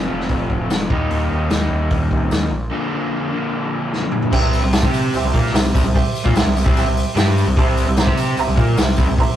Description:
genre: classic rock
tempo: 148 BPM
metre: 4/4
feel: straight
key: unclear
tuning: A4 = 439 Hz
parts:
  - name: crunchy overdriven guitar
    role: riff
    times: 0.0-9.2 s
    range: F2 to C5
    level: -26 LUFS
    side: right 2 dB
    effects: none
  - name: raw garage guitar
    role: riff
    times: 0.0-9.2 s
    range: Bb2 to C5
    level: -22 LUFS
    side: left 1 dB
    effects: overdrive
  - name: gritty driven synth bass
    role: bass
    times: 0.0-9.3 s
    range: D1 to C3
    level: -20 LUFS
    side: equal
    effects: none
  - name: vintage drum kit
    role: drums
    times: 0.2-9.3 s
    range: crash cymbal, hi-hat, kick drum, snare drum, toms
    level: -19 LUFS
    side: equal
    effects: none
  - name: tambourine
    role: percussion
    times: 0.7-9.1 s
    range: none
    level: -37 LUFS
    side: left 4 dB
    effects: none
  - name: bright upright piano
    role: accompaniment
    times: 4.3-9.4 s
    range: G4 to Bb5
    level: -24 LUFS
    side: right 5 dB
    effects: none
room: moderate small room reverb, RT60 0.5 s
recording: rough rehearsal-room recording, tube saturation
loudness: -15 LUFS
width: side -11 dB against mid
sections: 0.0-4.3 A section; 4.3-9.4 B section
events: break 2.7-4.3; drum fill 3.9-4.3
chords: 0.0 F; 0.9 Eb; 2.7 Bb; 4.3 C

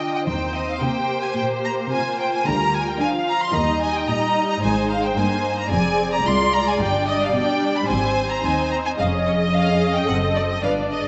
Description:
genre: quick classical-period movement for string orchestra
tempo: 110 BPM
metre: 4/4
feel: straight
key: unclear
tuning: A4 = 442 Hz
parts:
  - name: rich symphonic violin section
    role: melody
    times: 0.0-11.1 s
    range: Db5 to C6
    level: -26 LUFS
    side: equal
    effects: none
  - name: rich studio violin section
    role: second line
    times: 0.0-11.1 s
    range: Bb4 to F5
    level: -27 LUFS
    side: equal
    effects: none
  - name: warm symphonic viola section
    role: accompaniment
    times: 0.0-11.1 s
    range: F3 to B4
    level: -28 LUFS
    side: equal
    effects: none
  - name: warm symphonic cello section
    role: bass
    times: 0.0-11.1 s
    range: C2 to D4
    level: -28 LUFS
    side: equal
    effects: none
  - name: rich symphonic double bass section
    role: bass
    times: 0.3-11.1 s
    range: F1 to Eb2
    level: -31 LUFS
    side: equal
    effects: none
room: wet scoring stage reverb, RT60 1.6 s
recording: nothing above 8.0 kHz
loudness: -21 LUFS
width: mono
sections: 0.0-11.1 A section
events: none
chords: 0.3 Eb; 2.5 Bb/D; 3.6 Eb; 4.6 Ab; 5.7 Fm; 6.8 G; 7.9 Ab; 9.0 Db/F; 10.1 F#dim7

